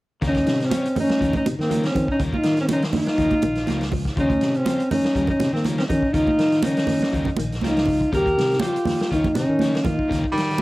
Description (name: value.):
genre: afrobeat.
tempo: 122 BPM.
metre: 4/4.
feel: straight.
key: Eb mixolydian.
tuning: A4 = 439 Hz.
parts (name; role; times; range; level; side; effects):
combo organ; accompaniment; 0.2-10.6 s; Db3 to Db4; -32 LUFS; left 3 dB; cassette tape.
semi-hollow electric guitar; arpeggios; 0.2-10.6 s; Db3 to G3; -32 LUFS; left 4 dB; none.
fingered electric bass; bass; 0.2-10.6 s; Bb1 to Eb3; -26 LUFS; equal; none.
vintage drum kit; drums; 0.2-10.6 s; hi-hat, kick drum, snare drum; -28 LUFS; equal; cassette tape.
trombone with bucket mute; melody; 0.3-10.3 s; Bb3 to G4; -21 LUFS; equal; none.
clear alto saxophone; second line; 0.3-10.3 s; C4 to Bb4; -30 LUFS; right 1 dB; cassette tape, tape echo.
congas; percussion; 0.7-10.6 s; none; -26 LUFS; right 4 dB; none.
bright baritone saxophone; second line; 10.3-10.6 s; G3; -23 LUFS; right 1 dB; cassette tape.
room: light reverb.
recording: home recording on cassette.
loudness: -18 LUFS.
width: side -19 dB against mid.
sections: 0.2-10.6 A section.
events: none.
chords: 0.2 Eb9.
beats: | 0.23 0.72 1.21 1.70 | 2.19 2.69 3.18 3.67 | 4.17 4.66 5.15 5.65 | 6.14 6.63 7.13 7.62 | 8.12 8.61 9.11 9.60 | 10.10 10.59.